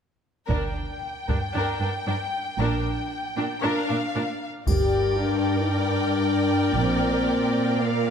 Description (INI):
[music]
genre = cinematic, epic orchestral film score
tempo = 115 BPM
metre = 4/4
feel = straight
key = G minor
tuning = A4 = 441 Hz
[part]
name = rich symphonic violin section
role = melody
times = 0.5-8.1 s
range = F5 to G5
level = -31 LUFS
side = left 1 dB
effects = none
[part]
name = clear symphonic violin section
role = second line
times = 0.5-8.1 s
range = Bb4 to D5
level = -33 LUFS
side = equal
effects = none
[part]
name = clear symphonic viola section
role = accompaniment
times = 0.5-8.1 s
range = D4 to Bb4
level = -30 LUFS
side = right 1 dB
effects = none
[part]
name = rich symphonic cello section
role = bass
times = 0.5-8.1 s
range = G2 to Bb2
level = -28 LUFS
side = right 2 dB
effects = none
[part]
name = rich symphonic double bass section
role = bass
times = 0.5-7.2 s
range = G1 to Bb1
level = -28 LUFS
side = right 3 dB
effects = none
[part]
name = taiko ensemble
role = drums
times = 0.5-1.5, 4.7-5.7 s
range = none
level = -28 LUFS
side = equal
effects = none
[part]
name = dark French horn section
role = sustained chords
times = 4.7-8.1 s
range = Bb3 to G4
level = -24 LUFS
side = left 3 dB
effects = none
[part]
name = triangle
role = percussion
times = 4.7-5.7 s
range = none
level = -42 LUFS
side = left 2 dB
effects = none
[sound]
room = moderate scoring stage reverb, RT60 1.9 s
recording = none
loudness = -22 LUFS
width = side -7 dB against mid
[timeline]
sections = 0.5-4.7 A section; 4.7-8.1 B section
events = none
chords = 0.5 Gm; 2.6 Bb; 4.7 Gm; 6.8 Bb